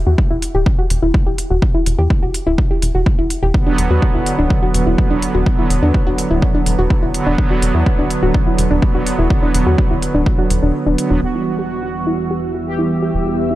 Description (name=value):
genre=melodic techno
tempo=125 BPM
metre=4/4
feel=straight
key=unclear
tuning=A4 = 441 Hz
part: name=tight sequencer bass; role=bass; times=0.0-13.6 s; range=D1 to E2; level=-17 LUFS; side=equal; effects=sidechain pumping
part: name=soft round pluck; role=arpeggios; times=0.1-13.6 s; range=D4 to G4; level=-21 LUFS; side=left 1 dB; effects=chorus, sidechain pumping, digital delay
part: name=electronic kick drum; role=drums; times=0.2-10.4 s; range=none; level=-16 LUFS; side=equal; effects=overdrive, small room reverb
part: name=electronic hi-hat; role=drums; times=0.4-11.1 s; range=none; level=-25 LUFS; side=equal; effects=overdrive, low-pass filter on hats, small room reverb
part: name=brassy analog pad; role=stabs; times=3.5-13.6 s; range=D3 to B3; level=-19 LUFS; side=right 3 dB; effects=chorus, tremolo, vintage 12-bit sampler grit, sidechain pumping, digital delay
part: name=analog synth brass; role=melody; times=11.2-13.5 s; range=F#4 to G4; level=-23 LUFS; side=equal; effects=chorus, vintage 12-bit sampler grit, sidechain pumping, dub echo
part: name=deep dark ambient pad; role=sustained chords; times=12.0-13.6 s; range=B4 to E6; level=-27 LUFS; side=left 1 dB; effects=chorus, built-in reverb, sidechain pumping
part: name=bowed-like drone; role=drone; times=11.5-13.6 s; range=E2 to E3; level=-28 LUFS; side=equal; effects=built-in reverb, sidechain pumping
room=light reverb, digital ambience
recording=dark, warm production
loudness=-14 LUFS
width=side -15 dB against mid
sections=0.0-11.2 A section; 11.2-13.6 B section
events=kick drops out 10.7-11.2; filter sweep on analog synth pad 11.2-13.6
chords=0.0 N.C.; 3.5 D6; 11.2 Em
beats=0.18 0.66 1.14 | 1.62 2.10 2.58 3.06 | 3.54 4.02 4.50 4.98 | 5.46 5.94 6.42 6.90 | 7.38 7.86 8.34 8.82 | 9.30 9.78 10.26 10.74 | 11.22 11.70 12.18 12.66 | 13.14